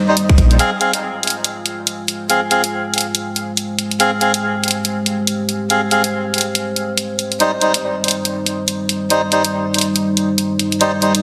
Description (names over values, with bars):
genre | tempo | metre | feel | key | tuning
deep dubstep | 141 BPM | 4/4 | swing 60% on 16ths, half-time | F minor | A4 = 440 Hz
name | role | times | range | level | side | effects
dark analog pad | sustained chords | 0.0-11.2 s | G3 to C5 | -23 LUFS | equal | chorus
flickering grainy texture | texture | 0.0-0.6 s | Eb5 | -36 LUFS | equal | none
melodica | stabs | 0.1-11.1 s | G3 to F5 | -21 LUFS | equal | dub echo
garage drum kit | drums | 0.2-11.2 s | finger snaps, hi-hat | -20 LUFS | equal | studio reverb
electronic kick drum | drums | 0.3-0.5 s | none | -14 LUFS | equal | studio reverb
dark detuned saw bass | bass | 0.4-0.6 s | Bb1 | -14 LUFS | equal | none
room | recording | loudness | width
wet lush hall reverb, RT60 2.3 s | dense, heavily limited modern master | -17 LUFS | mono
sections
0.6-11.2 A section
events
band accent 0.3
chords
0.0 Cm; 0.6 Fm; 7.4 Cm